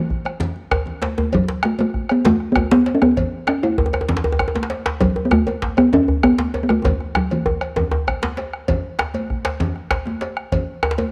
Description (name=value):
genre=west african traditional, West African drum ensemble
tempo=130 BPM (dotted quarters)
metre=12/8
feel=straight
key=unclear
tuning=A4 = 440 Hz
part: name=talking drum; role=melody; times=0.0-8.5 s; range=E3 to E4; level=-19 LUFS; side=equal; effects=slapback echo
part: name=bombo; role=percussion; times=0.1-11.0 s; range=none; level=-27 LUFS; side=equal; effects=none
part: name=congas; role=percussion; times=0.1-11.1 s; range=none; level=-31 LUFS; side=equal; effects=none
part: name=djembe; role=percussion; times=0.1-11.1 s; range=none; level=-30 LUFS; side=equal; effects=none
part: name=cowbell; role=percussion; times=0.3-11.1 s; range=none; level=-32 LUFS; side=equal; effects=none
part: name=djembe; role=percussion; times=0.7-11.1 s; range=none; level=-25 LUFS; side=equal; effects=none
room=light reverb, small room ambience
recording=none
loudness=-19 LUFS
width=mono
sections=0.0-8.7 A section; 8.7-11.1 B section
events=drum fill 0.9-1.3, 6.8-8.7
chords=none